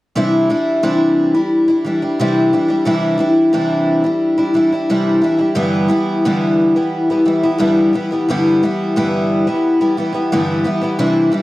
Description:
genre	rock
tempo	89 BPM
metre	4/4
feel	straight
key	C major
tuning	A4 = 439 Hz
part	picked twelve-string acoustic guitar	solo	0.2-11.4 s	G2 to E4	-13 LUFS	equal	slapback echo
room	little or no reverb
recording	dry, close 1970s-style studio recording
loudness	-13 LUFS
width	side -18 dB against mid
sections	0.1-11.4 A section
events	none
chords	0.1 Cadd9; 5.6 G6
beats	| 0.15 0.83 1.50 2.18 | 2.86 3.54 4.21 4.89 | 5.57 6.25 6.92 7.60 | 8.28 8.96 9.63 10.31 | 10.99

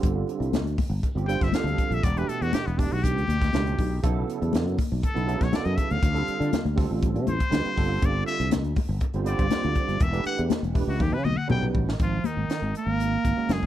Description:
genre	electric jazz fusion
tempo	120 BPM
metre	4/4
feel	straight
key	unclear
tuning	A4 = 439 Hz
part	barky tine electric piano	accompaniment	0.0-13.7 s	B2 to C5	-30 LUFS	right 7 dB	overdrive, ensemble chorus
part	sustaining fretless electric bass	bass	0.0-13.7 s	E1 to D3	-26 LUFS	equal	analog chorus
part	crisp fusion drum kit	drums	0.0-13.7 s	hi-hat, kick drum, snare drum, toms	-27 LUFS	equal	none
part	congas	percussion	0.0-13.6 s	none	-31 LUFS	left 10 dB	none
part	trumpet with straight mute	melody	1.3-13.7 s	B3 to G5	-30 LUFS	left 4 dB	none
part	breathy bass clarinet	second line	12.0-13.7 s	D#3 to A#3	-29 LUFS	right 6 dB	none
room	small room ambience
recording	none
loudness	-23 LUFS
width	side -12 dB against mid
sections	0.0-12.0 A section; 12.0-13.7 B section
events	muted trumpet solo 0.0-12.0; drum fill 11.0-12.0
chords	0.0 G7sus2; 2.0 Em7; 4.0 B7sus2; 6.0 Dm7; 7.8 Gsus2; 10.0 Em7; 11.0 D#7alt; 12.0 G#7sus2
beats	| 0.03 0.53 1.03 1.53 | 2.03 2.53 3.03 3.53 | 4.03 4.53 5.03 5.53 | 6.03 6.53 7.03 7.52 | 8.02 8.52 9.02 9.52 | 10.01 10.51 11.01 11.51 | 12.01 12.50 13.00 13.50

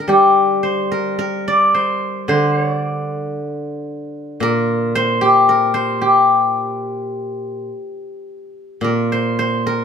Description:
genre	chinese traditional, Chinese solo plucked strings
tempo	52-57 BPM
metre	2/4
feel	rubato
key	G yu mode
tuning	A4 = 440 Hz
part	steel-string zither	solo	0.0-9.8 s	Bb2 to D5	-15 LUFS	left 1 dB	none
room	light reverb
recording	close, detailed microphones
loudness	-15 LUFS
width	side -7 dB against mid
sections	0.0-8.8 A section; 8.8-9.8 B section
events	none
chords	none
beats	| 0.08 1.20 | 2.29 3.36 | 4.42 5.49 | 6.56 7.68 | 8.83

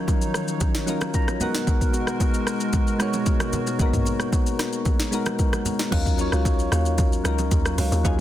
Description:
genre	amapiano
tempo	113 BPM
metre	4/4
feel	straight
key	Eb minor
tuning	A4 = 440 Hz
part	soft electric-piano-like synth keys	accompaniment	0.0-8.2 s	F3 to Bb5	-26 LUFS	left 1 dB	chorus
part	hollow soft pad	sustained chords	0.0-5.9 s	Cb3 to Db5	-30 LUFS	equal	chorus, sidechain pumping
part	afro-pop drum kit	drums	0.1-8.2 s	crash cymbal, hi-hat, kick drum, rim click, shaker, snare drum, toms	-23 LUFS	equal	soft clipping on snare
part	bongos and congas	percussion	0.1-8.2 s	none	-33 LUFS	right 2 dB	none
part	marimba with medium mallets	stabs	5.9-8.2 s	Gb4 to F5	-32 LUFS	equal	digital delay
part	hollow log drum bass	bass	5.9-8.2 s	Db2 to Eb2	-24 LUFS	equal	none
room	digital ambience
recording	dense, heavily limited modern master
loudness	-20 LUFS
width	side -13 dB against mid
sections	0.0-5.9 A section; 5.9-8.2 B section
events	synth keys fill 0.9-1.7; drop 5.9-8.2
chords	0.0 Ebm9; 1.4 Abm9; 5.9 Ebm9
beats	0.08 0.61 1.14 | 1.67 2.21 2.74 3.27 | 3.80 4.33 4.86 5.39 | 5.92 6.45 6.98 7.51 | 8.05

